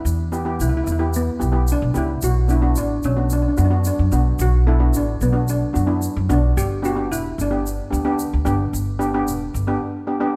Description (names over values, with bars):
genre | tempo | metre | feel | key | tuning
calypso | 110 BPM | 4/4 | straight | unclear | A4 = 437 Hz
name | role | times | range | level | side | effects
steel pan | melody | 0.0-10.3 s | B3 to G4 | -27 LUFS | equal | none
steel pan | accompaniment | 0.0-10.4 s | B3 to A4 | -26 LUFS | equal | none
upright bass | bass | 0.0-9.7 s | E1 to F#2 | -22 LUFS | equal | none
egg shaker | percussion | 0.1-9.7 s | none | -38 LUFS | equal | none
room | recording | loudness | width
light reverb | dark, warm production | -20 LUFS | mono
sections
0.0-10.4 A section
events
none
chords
0.0 Em; 2.2 Bm; 6.6 G